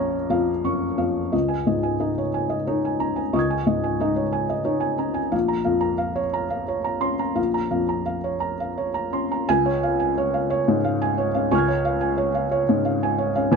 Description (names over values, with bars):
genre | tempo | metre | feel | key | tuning
neoclassical minimalist piano | 59 BPM (dotted quarters) | 6/8 | rubato | Db major | A4 = 440 Hz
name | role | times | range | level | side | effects
felt-muted upright piano | solo | 0.0-13.6 s | Bb1 to Bb6 | -20 LUFS | equal | none
room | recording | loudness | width
moderate studio reverb, RT60 0.6 s | dark, warm production | -20 LUFS | side -5 dB against mid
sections
0.0-1.3 A section; 1.3-9.5 B section; 9.5-13.6 C section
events
none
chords
0.0 Bbm; 1.3 Dbsus2; 5.3 Bbm; 9.5 Db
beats
0.28 | 1.33 2.35 | 3.35 4.35 | 5.33 6.33 | 7.38 8.42 | 9.47 10.49 | 11.51 12.53 | 13.55